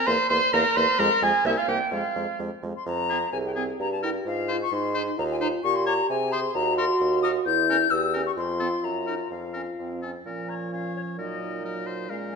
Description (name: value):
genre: quick classical-period movement for wind quintet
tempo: 130 BPM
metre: 2/4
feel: straight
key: F minor, Bb minor from 6.5 s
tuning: A4 = 436 Hz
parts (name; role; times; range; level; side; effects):
- clear oboe; second line; 0.0-12.4 s; E4 to Db5; -30 LUFS; left 5 dB; none
- mellow clarinet; accompaniment; 0.0-12.4 s; C4 to C6; -29 LUFS; right 8 dB; none
- silver concert flute; melody; 0.1-12.4 s; Db5 to G6; -28 LUFS; left 6 dB; none
- dark French horn; accompaniment; 0.1-12.4 s; F3 to Ab4; -30 LUFS; equal; none
- warm bassoon; bass; 0.1-12.4 s; C2 to C3; -30 LUFS; right 3 dB; none
room: wet recital hall reverb, RT60 1.8 s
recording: none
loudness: -23 LUFS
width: side -5 dB against mid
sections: 0.0-2.9 A section; 2.9-10.3 B section; 10.3-12.4 C section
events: none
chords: 0.1 C7/E; 1.0 Fm; 1.5 C5; 1.9 Fm; 3.8 Edim/G; 4.3 Fm/Ab; 4.7 Ab; 5.6 Gdim/Bb; 6.1 Ab/C; 6.5 Cm7b5/Eb; 7.5 Em6; 8.4 F5; 8.8 Ebm/Gb; 9.3 Bbm/F (rootless); 9.8 F5; 10.3 Bbm; 11.2 Ebm/Bb